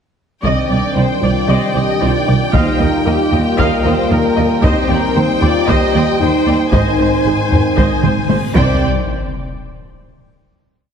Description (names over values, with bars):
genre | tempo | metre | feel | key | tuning
cinematic, epic orchestral film score | 115 BPM | 4/4 | straight | C minor | A4 = 438 Hz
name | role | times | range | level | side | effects
rich symphonic violin section | melody | 0.4-8.9 s | G5 to Ab5 | -23 LUFS | left 3 dB | none
warm symphonic violin section | second line | 0.4-8.9 s | G4 to Eb5 | -22 LUFS | left 3 dB | none
rich symphonic viola section | accompaniment | 0.4-8.8 s | Ab4 to F5 | -22 LUFS | right 1 dB | none
dark French horn section | sustained chords | 0.4-8.8 s | Bb3 to G4 | -20 LUFS | left 2 dB | none
warm trombone section | sustained chords | 0.4-8.8 s | Eb3 to F4 | -23 LUFS | right 3 dB | none
clear symphonic double bass section | bass | 0.4-8.8 s | Ab1 to Eb2 | -19 LUFS | right 3 dB | none
warm symphonic cello section | bass | 0.4-8.8 s | C2 to C3 | -20 LUFS | right 2 dB | none
taiko ensemble | drums | 0.4-9.6 s | none | -19 LUFS | left 1 dB | none
reverse cymbal and sub drop | sound effects | 8.4-10.7 s | none | -26 LUFS | left 1 dB | none
room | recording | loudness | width
wet scoring stage reverb, RT60 2.1 s | heavily compressed radio sound | -12 LUFS | side -7 dB against mid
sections
0.4-8.8 theme; 8.8-10.9 final hit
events
drum fill 8.0-8.8; reverse cymbal 8.4-8.8; impact 8.8-10.9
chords
0.4 Cmadd9; 2.5 Ebadd9; 4.6 Cmadd9/Eb; 6.7 Ab; 8.6 Cmadd9; 8.8 N.C.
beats
| 0.45 0.97 1.50 2.02 | 2.54 3.07 3.59 4.11 | 4.64 5.16 5.68 6.21 | 6.73 7.25 7.78 8.30 | 8.82 9.35 9.87 10.39